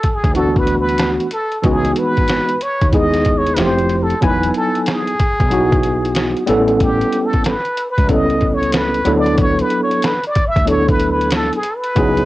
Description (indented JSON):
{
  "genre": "hip hop, jazz-hop",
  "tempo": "93 BPM",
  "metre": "4/4",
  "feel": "swing 65% on 16ths",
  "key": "unclear",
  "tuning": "A4 = 440 Hz",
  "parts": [
    { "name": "trumpet with plunger mute", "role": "melody", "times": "0.0-12.3 s", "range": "G4 to E5", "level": "-19 LUFS", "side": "equal", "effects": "analog delay" },
    { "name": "trip hop sampler-style drum kit", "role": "drums", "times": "0.0-12.3 s", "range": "hi-hat, kick drum, snare drum", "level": "-18 LUFS", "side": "equal", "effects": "none" },
    { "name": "woody fretless electric bass", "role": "bass", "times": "0.2-12.2 s", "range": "E1 to D#2", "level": "-21 LUFS", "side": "equal", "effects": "tube saturation" },
    { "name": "tine electric piano", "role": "accompaniment", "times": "0.3-12.3 s", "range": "E3 to G#5", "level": "-16 LUFS", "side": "equal", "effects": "overdrive, fast stereo tremolo, cassette tape" }
  ],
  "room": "moderate booth ambience, RT60 0.2 s",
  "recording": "home recording on cassette",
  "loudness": "-13 LUFS",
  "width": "side -17 dB against mid",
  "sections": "0.0-12.3 A section",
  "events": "muted trumpet solo 0.0-12.3",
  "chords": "0.0 D69; 1.6 C#m11; 3.6 Fmaj9; 4.2 Emaj9; 6.5 A9; 9.1 D69"
}